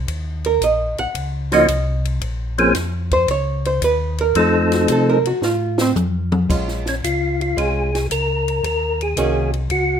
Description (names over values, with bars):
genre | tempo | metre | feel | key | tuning
soul jazz organ trio | 112 BPM | 4/4 | swing 69% on 8ths | Bb minor | A4 = 436 Hz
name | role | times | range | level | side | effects
mellow tonewheel organ | bass | 0.0-10.0 s | Bb1 to C3 | -22 LUFS | left 1 dB | slow rotary speaker
compact cocktail drum kit | drums | 0.1-9.9 s | crash cymbal, hi-hat, kick drum, ride cymbal, snare drum, toms | -25 LUFS | left 1 dB | none
archtop guitar, miked and amplified | accompaniment | 0.5-9.5 s | Eb3 to Gb5 | -19 LUFS | right 3 dB | none
percussive tonewheel organ | melody | 1.5-10.0 s | F3 to Bb4 | -18 LUFS | left 1 dB | overdrive, chorus vibrato, fast rotary speaker
room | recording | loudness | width
light reverb | minimal, uncompressed stereo recording | -16 LUFS | side -8 dB against mid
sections
0.0-6.5 A section; 6.5-10.0 B section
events
hollow-body jazz guitar solo 0.0-6.5; drum fill 5.4-6.5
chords
0.1 Ebm7; 2.2 Bbm; 4.4 F7; 6.5 Bbm7; 8.6 Ebm7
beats
| 0.08 0.61 1.15 1.68 | 2.22 2.75 3.29 3.82 | 4.36 4.89 5.42 5.96 | 6.49 7.03 7.56 8.09 | 8.63 9.16 9.70